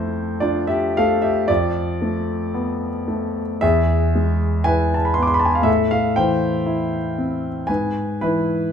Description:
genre	classical, romantic nocturne for solo piano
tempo	55-61 BPM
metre	4/4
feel	rubato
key	A minor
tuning	A4 = 439 Hz
part	warm concert grand piano	solo	0.0-8.7 s	E2 to D6	-18 LUFS	equal	none
room	wet recital hall reverb, RT60 1.3 s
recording	close, detailed microphones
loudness	-18 LUFS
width	side -7 dB against mid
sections	0.0-8.7 A section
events	none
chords	0.0 Dm/F; 1.5 Bm7b5/F; 3.6 E; 5.7 Am; 7.7 E/G#

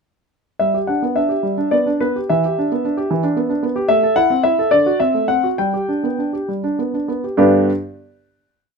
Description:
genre	classical-period piano sonatina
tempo	67-77 BPM (dotted quarters)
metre	6/8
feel	rubato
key	G major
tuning	A4 = 440 Hz
part	clear concert grand piano	solo	0.6-7.7 s	G2 to G5	-15 LUFS	equal	none
room	light reverb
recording	minimal, uncompressed stereo recording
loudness	-15 LUFS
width	side -5 dB against mid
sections	0.6-7.4 theme; 7.4-8.8 final chord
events	none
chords	0.6 G; 2.3 Em7; 3.9 Am; 4.7 D7; 5.6 G

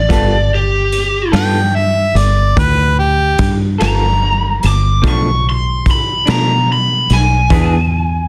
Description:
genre	slow blues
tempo	49 BPM (dotted quarters)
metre	12/8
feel	straight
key	G mixolydian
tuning	A4 = 441 Hz
part	lead guitar through a small cranked amp	melody	0.0-8.3 s	G4 to D6	-19 LUFS	equal	overdrive
part	fingered electric bass	bass	0.0-8.3 s	G1 to B2	-17 LUFS	equal	none
part	electric guitar through a small old amp	accompaniment	0.1-7.8 s	B2 to A4	-22 LUFS	equal	harmonic tremolo
part	raw garage drum kit	drums	0.1-7.7 s	hi-hat, kick drum, snare drum	-21 LUFS	equal	none
part	clear harmonica	second line	1.4-3.6 s	G4 to G5	-18 LUFS	equal	overdrive
room	light reverb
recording	dense, heavily limited modern master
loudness	-13 LUFS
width	mono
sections	0.0-8.3 A section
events	none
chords	0.1 G9; 5.0 Bm7b5; 7.5 E7

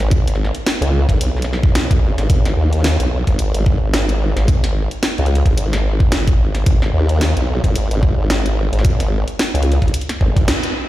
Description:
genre	glitch hop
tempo	110 BPM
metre	4/4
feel	swing 57% on 16ths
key	G# minor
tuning	A4 = 440 Hz
part	formant-sweep wobble bass	bass	0.0-10.5 s	G#1 to D#2	-16 LUFS	equal	chorus
part	drum and bass drum kit	drums	0.0-10.7 s	hi-hat, snare drum	-22 LUFS	equal	small room ambience
part	electronic kick drum	drums	0.1-10.5 s	none	-15 LUFS	equal	small room ambience
room	little or no reverb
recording	played on a big sound system in a bare room, large studio reverb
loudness	-14 LUFS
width	side -15 dB against mid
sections	0.0-10.9 A section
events	break 10.5-10.9; band accent 10.5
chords	none

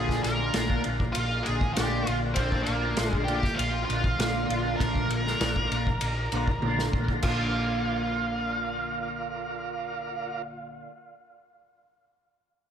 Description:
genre	psychedelic rock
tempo	99 BPM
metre	4/4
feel	straight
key	Bb major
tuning	A4 = 440 Hz
part	octave-fuzz lead guitar	melody	0.0-10.4 s	Bb3 to Bb4	-31 LUFS	right 2 dB	wah, distortion, dub echo
part	tonewheel organ	sustained chords	0.0-10.4 s	F4 to Bb5	-40 LUFS	right 4 dB	slow rotary speaker
part	electric guitar with an envelope filter	riff	0.0-10.9 s	Bb2 to F4	-32 LUFS	equal	rotary speaker, double-tracked left and right, dub echo
part	hollow-body short-scale picked electric bass	bass	0.0-10.8 s	Bb1	-31 LUFS	equal	none
part	vintage drum kit	drums	0.1-7.4 s	crash cymbal, kick drum, ride cymbal, snare drum, toms	-30 LUFS	equal	none
room	small room ambience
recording	echo-heavy mix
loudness	-25 LUFS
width	side -8 dB against mid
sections	0.0-7.2 A section; 7.2-9.7 B section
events	drum fill 6.6-7.2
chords	0.0 Bb

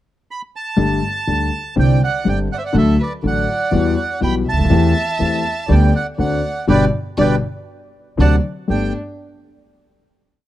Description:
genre	tango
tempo	122 BPM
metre	4/4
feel	rubato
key	G major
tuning	A4 = 440 Hz
part	bandoneon	melody	0.3-8.9 s	B4 to B5	-23 LUFS	right 5 dB	none
part	warm concert grand piano	accompaniment	0.8-8.9 s	G1 to G4	-18 LUFS	left 4 dB	none
part	upright bass	bass	0.8-8.9 s	G1 to E2	-18 LUFS	right 2 dB	none
part	warm violin	second line	1.8-8.9 s	D4 to G5	-25 LUFS	right 1 dB	none
room	studio ambience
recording	dry, close 1970s-style studio recording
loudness	-15 LUFS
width	side -13 dB against mid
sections	0.0-0.8 pickup bar; 0.8-8.7 A section; 8.7-10.5 final chord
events	band accent 6.7-8.7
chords	0.0 N.C.; 0.8 Gsus2; 1.8 Csus2; 2.8 D; 3.7 Emadd9; 4.7 Am7/E; 5.7 G/D; 6.2 D7; 6.7 G; 8.2 D7; 8.7 Gadd9

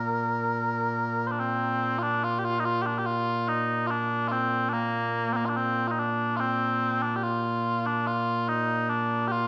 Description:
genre	scottish traditional, Scottish pipe music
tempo	72 BPM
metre	3/4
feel	straight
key	Bb major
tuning	A4 = 440 Hz
part	mellow small bagpipes	solo	0.0-9.5 s	Bb2 to C5	-27 LUFS	equal	none
room	wet recital hall reverb, RT60 1.7 s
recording	none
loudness	-27 LUFS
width	mono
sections	0.0-1.4 A section; 1.4-9.5 A section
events	none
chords	none

